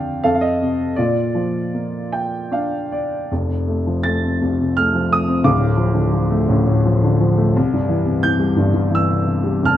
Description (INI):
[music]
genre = classical, lyrical solo piano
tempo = 75-90 BPM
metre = 3/4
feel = rubato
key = unclear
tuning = A4 = 441 Hz
[part]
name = dark grand piano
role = solo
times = 0.0-9.8 s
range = D1 to A6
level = -16 LUFS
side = equal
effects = none
[sound]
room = light reverb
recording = close, detailed microphones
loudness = -16 LUFS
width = side -12 dB against mid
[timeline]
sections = 0.0-3.3 A section; 3.3-9.8 B section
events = grand piano fill 1.7-3.3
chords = 0.2 F7; 1.0 Bb; 3.3 F; 5.4 Dm; 7.5 C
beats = 0.24 | 0.98 1.74 2.53 | 3.30 4.04 4.76 | 5.45 6.14 6.85 | 7.54 8.23 8.93 | 9.64